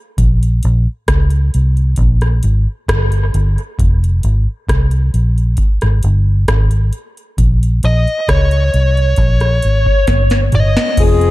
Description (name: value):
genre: dub reggae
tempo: 67 BPM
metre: 4/4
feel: straight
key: unclear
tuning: A4 = 439 Hz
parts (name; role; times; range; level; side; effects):
- vintage muted fingered electric bass; bass; 0.2-11.3 s; F1 to Db2; -12 LUFS; equal; none
- booming analog drum machine; drums; 0.2-11.3 s; crash cymbal, hi-hat, kick drum, rim click, snare drum, toms; -15 LUFS; equal; overdrive
- fuzz lead guitar; melody; 7.9-11.0 s; Db5 to Eb5; -17 LUFS; left 1 dB; distortion, dub echo
- warm horn section; second line; 11.0-11.3 s; F3 to Ab4; -13 LUFS; left 6 dB; none
room: digital ambience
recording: echo-heavy mix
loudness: -11 LUFS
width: side -17 dB against mid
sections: 0.0-11.0 A section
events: break 0.0-7.4; drum fill 10.1-11.0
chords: 0.2 Bbm; 3.8 Fm; 7.4 Bbm